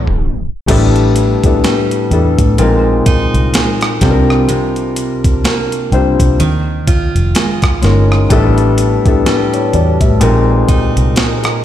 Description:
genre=contemporary R&B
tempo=63 BPM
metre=4/4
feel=swing 58% on 16ths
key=unclear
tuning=A4 = 436 Hz
part: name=felt-muted upright piano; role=accompaniment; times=0.0-11.6 s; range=G3 to A5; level=-15 LUFS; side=left 4 dB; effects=none
part: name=deep dark ambient pad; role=sustained chords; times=0.0-0.7, 9.2-11.6 s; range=G4 to Bb5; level=-25 LUFS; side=left 1 dB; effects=chorus, built-in reverb
part: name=picked steel-string acoustic guitar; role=arpeggios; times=0.0-11.6 s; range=G2 to F4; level=-17 LUFS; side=right 3 dB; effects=tape echo
part: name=clean 12-bit digital drum machine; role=drums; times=0.0-11.6 s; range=crash cymbal, hi-hat, kick drum, rim click, snare drum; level=-15 LUFS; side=equal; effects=none
part: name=vintage muted fingered electric bass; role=bass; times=0.2-11.1 s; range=F1 to C3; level=-14 LUFS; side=equal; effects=none
room=light reverb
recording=played on a big sound system in a bare room, stone room reverb, tape stop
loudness=-10 LUFS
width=side -11 dB against mid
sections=0.7-11.6 A section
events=felt piano fill 0.0-0.7; tape stop 0.0-0.7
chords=0.0 G9sus4; 0.7 A9sus4; 2.6 Bb9sus4; 4.0 C9sus4; 6.4 Eb9sus4; 8.3 A9sus4; 10.2 Bb9sus4

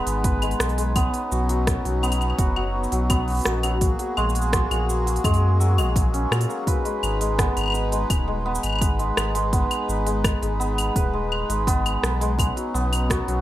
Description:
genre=folktronica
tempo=84 BPM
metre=4/4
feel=straight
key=G# minor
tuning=A4 = 440 Hz
part: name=pedal harmonium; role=sustained chords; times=0.0-13.4 s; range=G#3 to B4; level=-30 LUFS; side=left 1 dB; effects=plate reverb
part: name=hammered dulcimer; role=arpeggios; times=0.0-13.4 s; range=F#3 to B4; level=-26 LUFS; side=equal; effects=digital delay, plate reverb
part: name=warm sub bass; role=bass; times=0.1-13.4 s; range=D#1 to A#2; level=-24 LUFS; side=equal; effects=none
part: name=organic electronic drum kit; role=drums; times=0.1-13.4 s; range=claves, hi-hat, rim click, shaker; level=-28 LUFS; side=left 1 dB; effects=none
part: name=electronic kick drum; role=drums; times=0.2-13.2 s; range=none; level=-24 LUFS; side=equal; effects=none
room=light reverb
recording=none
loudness=-20 LUFS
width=side -14 dB against mid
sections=0.0-13.4 A section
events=none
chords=0.0 G#m; 1.0 Badd9; 3.8 F#add9/A#; 6.7 G#m; 12.4 Badd9

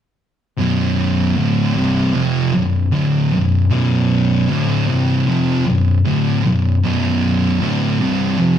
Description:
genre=metal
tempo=77 BPM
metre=4/4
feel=straight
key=B phrygian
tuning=A4 = 435 Hz
part: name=thick fuzz guitar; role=riff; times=0.6-8.6 s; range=B1 to E#3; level=-17 LUFS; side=left 3 dB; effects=distortion
part: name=thick fuzz guitar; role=riff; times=0.6-8.6 s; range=B1 to E#3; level=-17 LUFS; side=right 3 dB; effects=distortion
room=moderate stone room reverb, RT60 1.0 s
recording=rough rehearsal-room recording, tube saturation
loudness=-14 LUFS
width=side -9 dB against mid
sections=0.6-8.6 A section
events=none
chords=0.6 Bm

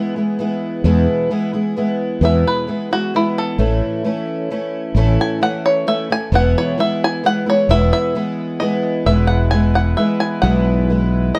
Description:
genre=acoustic folk duo or small band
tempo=131 BPM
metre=3/4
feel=straight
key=E major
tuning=A4 = 442 Hz
part: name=bluegrass banjo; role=melody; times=0.0-11.4 s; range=B3 to G#5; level=-22 LUFS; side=equal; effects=none
part: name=fingerpicked twelve-string acoustic guitar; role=accompaniment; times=0.0-11.4 s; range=E2 to E4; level=-21 LUFS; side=equal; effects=none
part: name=mellow fretless electric bass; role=bass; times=0.8-11.3 s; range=E1 to E2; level=-17 LUFS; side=equal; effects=none
part: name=accordion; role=sustained chords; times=9.1-11.4 s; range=G#3 to B4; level=-32 LUFS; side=equal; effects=none
room=light reverb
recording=none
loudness=-17 LUFS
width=mono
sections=0.0-9.1 A section; 9.1-11.4 B section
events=five-string banjo solo 0.0-9.1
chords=0.0 E; 3.6 A; 6.3 E

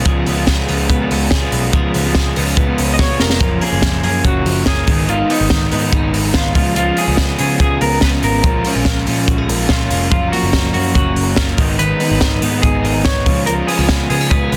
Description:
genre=jangly indie pop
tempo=143 BPM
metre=4/4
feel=straight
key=unclear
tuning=A4 = 440 Hz
part: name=raw garage guitar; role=accompaniment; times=0.0-14.6 s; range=F#2 to E#4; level=-23 LUFS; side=equal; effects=overdrive
part: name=twelve-string electric guitar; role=arpeggios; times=0.0-14.6 s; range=D#3 to G#4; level=-24 LUFS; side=equal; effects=harmonic tremolo
part: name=vintage muted picked electric bass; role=bass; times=0.0-14.6 s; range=E#1 to C#3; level=-22 LUFS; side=equal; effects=none
part: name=compact cocktail drum kit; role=drums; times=0.1-14.6 s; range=hi-hat, kick drum, snare drum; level=-19 LUFS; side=equal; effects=none
part: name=clean electric guitar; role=melody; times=2.9-14.6 s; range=D#4 to D#5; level=-23 LUFS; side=equal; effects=analog delay
room=light reverb, small room ambience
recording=dense, heavily limited modern master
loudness=-15 LUFS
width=mono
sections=0.1-3.4 A section; 3.4-14.6 B section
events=drum fill 3.0-3.4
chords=0.1 C#7; 3.4 F#maj7; 4.9 G#m; 6.6 C#7; 8.4 A#m7; 10.1 F#maj7; 11.6 G#m; 13.3 C#7

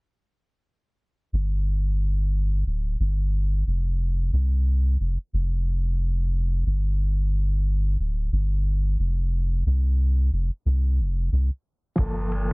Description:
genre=trip hop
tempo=90 BPM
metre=4/4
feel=swing 60% on 16ths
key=G minor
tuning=A4 = 440 Hz
part: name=soft dub sub bass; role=bass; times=1.3-12.5 s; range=D1 to C2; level=-22 LUFS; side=equal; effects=none
part: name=overdriven reed electric piano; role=accompaniment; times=12.0-12.5 s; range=F3 to A4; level=-28 LUFS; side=equal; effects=fast tremolo
part: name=crunchy breakbeat drum kit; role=drums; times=12.0-12.5 s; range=kick drum, ride cymbal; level=-27 LUFS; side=equal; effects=none
room=small room ambience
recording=heavily compressed radio sound, multiband compression, low-pass filter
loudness=-22 LUFS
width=side -39 dB against mid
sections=1.3-12.5 A section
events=filter sweep 1.3-12.5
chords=1.3 G5; 4.0 F5; 6.7 G5; 9.3 F5; 12.0 Gm9

